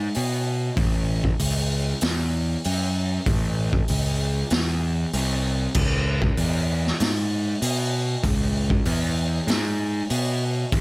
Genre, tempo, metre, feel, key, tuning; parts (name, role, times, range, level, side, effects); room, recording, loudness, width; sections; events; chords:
stoner and doom metal; 96 BPM; 4/4; straight; C# minor; A4 = 440 Hz
fuzz picked electric bass; bass; 0.0-10.8 s; A1 to B2; -23 LUFS; equal; overdrive
raw garage drum kit; drums; 0.1-10.8 s; crash cymbal, hi-hat, kick drum, snare drum; -25 LUFS; equal
little or no reverb; -21 LUFS; side -29 dB against mid
0.0-10.8 A section